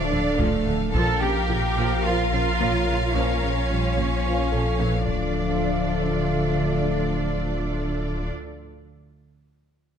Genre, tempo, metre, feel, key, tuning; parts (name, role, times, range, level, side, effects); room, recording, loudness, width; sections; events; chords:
cinematic, hybrid orchestral and electronic film score; 109 BPM; 4/4; straight; D harmonic minor; A4 = 439 Hz
warm symphonic violin section; melody; 0.0-8.3 s; D5 to F5; -34 LUFS; left 4 dB
warm symphonic violin section; second line; 0.0-8.3 s; A4 to A5; -33 LUFS; equal
rich symphonic viola section; accompaniment; 0.0-8.3 s; Db3 to Bb4; -32 LUFS; left 1 dB
mellow French horn section; sustained chords; 0.0-8.3 s; A3 to F4; -34 LUFS; left 4 dB
warbly tape-like pad; sustained chords; 0.0-8.3 s; F3 to F5; -30 LUFS; left 2 dB; chorus, built-in reverb
warm trombone section; sustained chords; 0.0-8.3 s; Bb2 to F3; -34 LUFS; right 2 dB
punchy sub bass; bass; 0.0-8.3 s; D1 to Bb1; -28 LUFS; left 1 dB
rich symphonic cello section; bass; 0.0-8.3 s; A3 to A4; -28 LUFS; right 4 dB
warm grand piano; texture; 0.0-5.4 s; A3 to D5; -35 LUFS; left 1 dB; ping-pong delay
tight sequenced synth; arpeggios; 0.1-5.0 s; D3 to F4; -34 LUFS; left 2 dB; chorus, phaser, ping-pong delay
warm symphonic double bass section; bass; 0.1-8.3 s; Bb1 to D2; -30 LUFS; right 3 dB
solo taiko drums; drums; 0.4-6.1 s; -30 LUFS; equal
moderate scoring stage reverb, RT60 1.6 s; -21 LUFS; side -8 dB against mid
0.0-5.3 A section; 5.3-7.5 B section
0.0 Dm; 0.9 Bbm; 5.1 Dm